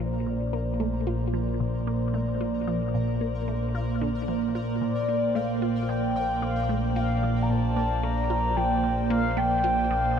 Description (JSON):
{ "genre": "ambient, sequencer-driven space music", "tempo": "112 BPM", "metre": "4/4", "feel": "straight", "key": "Bb major", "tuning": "A4 = 438 Hz", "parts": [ { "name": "evolving wavetable pad", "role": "sustained chords", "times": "0.0-10.2 s", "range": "Bb2 to D5", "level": "-28 LUFS", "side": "right 2 dB", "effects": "chorus, built-in reverb" }, { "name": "resonant blip pluck", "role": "riff", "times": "0.0-10.2 s", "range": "Bb2 to F4", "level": "-34 LUFS", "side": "left 1 dB", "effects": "phaser, ping-pong delay" }, { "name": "fat analog bass", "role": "bass", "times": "0.0-10.2 s", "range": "Bb1", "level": "-30 LUFS", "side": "left 1 dB", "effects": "none" }, { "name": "pulsing gated texture", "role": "texture", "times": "0.0-10.2 s", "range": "Bb4 to Bb5", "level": "-41 LUFS", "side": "right 1 dB", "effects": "chorus, built-in reverb" }, { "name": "mellow horn-like synth lead", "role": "melody", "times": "4.8-10.2 s", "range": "D5 to Bb5", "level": "-27 LUFS", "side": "left 1 dB", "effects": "chorus, ping-pong delay" } ], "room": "wet plate reverb, RT60 2.5 s", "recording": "echo-heavy mix", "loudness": "-24 LUFS", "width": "side -8 dB against mid", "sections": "0.0-10.2 A section", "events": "fade-in on synth texture 0.0-10.2", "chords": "0.0 Bbadd9" }